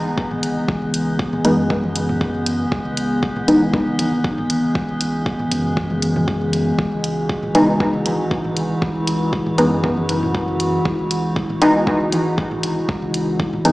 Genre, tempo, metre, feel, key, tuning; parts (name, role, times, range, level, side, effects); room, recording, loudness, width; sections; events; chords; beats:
dub techno; 118 BPM; 4/4; swing 54% on 16ths; A4 = 435 Hz
warbly tape-like pad; sustained chords; 0.0-13.7 s; C#3 to E4; -22 LUFS; equal; chorus, built-in reverb, sidechain pumping
warm sub bass; bass; 0.0-13.7 s; G#1 to F#2; -28 LUFS; equal; tube saturation, sidechain pumping
metallic inharmonic drone; texture; 0.0-13.7 s; G#3 to G#4; -26 LUFS; left 1 dB; chorus, built-in reverb, sidechain pumping
electronic kick drum; drums; 0.2-13.5 s; -22 LUFS; equal
electronic toms; percussion; 0.3-13.7 s; -30 LUFS; equal
electronic hi-hat; drums; 0.4-13.7 s; -24 LUFS; equal
filtered dub chord stab; stabs; 1.4-3.7, 7.5-13.7 s; E3 to D#4; -19 LUFS; equal; chorus, phaser, sidechain pumping, dub echo
moderate huge ambient reverb, RT60 7.0 s; played on a big sound system in a bare room, stone room reverb, small speaker sound; -17 LUFS; side -19 dB against mid
0.0-13.7 A section
0.0 C#m7
0.18 | 0.69 1.19 1.70 2.21 | 2.72 3.23 3.74 4.24 | 4.75 5.26 5.77 6.28 | 6.79 7.29 7.80 8.31 | 8.82 9.33 9.84 10.35 | 10.85 11.36 11.87 12.38 | 12.89 13.40